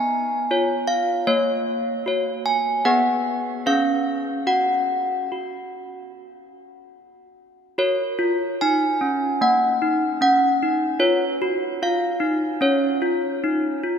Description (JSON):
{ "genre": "classical, tune for handbells", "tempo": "74 BPM", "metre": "4/4", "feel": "uneven beats", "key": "F# major", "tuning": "A4 = 440 Hz", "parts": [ { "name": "desk bells", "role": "solo", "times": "0.0-14.0 s", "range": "A#3 to G#5", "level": "-19 LUFS", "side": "equal", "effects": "none" } ], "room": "wet cathedral reverb, RT60 4.8 s", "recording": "none", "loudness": "-19 LUFS", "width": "side -7 dB against mid", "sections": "0.0-7.8 A section; 7.8-14.0 B section", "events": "none", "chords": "0.0 C#7/B; 1.3 F#/A#; 2.8 G#m/B; 3.6 C#7; 4.5 N.C.; 7.8 F#; 11.0 C#7" }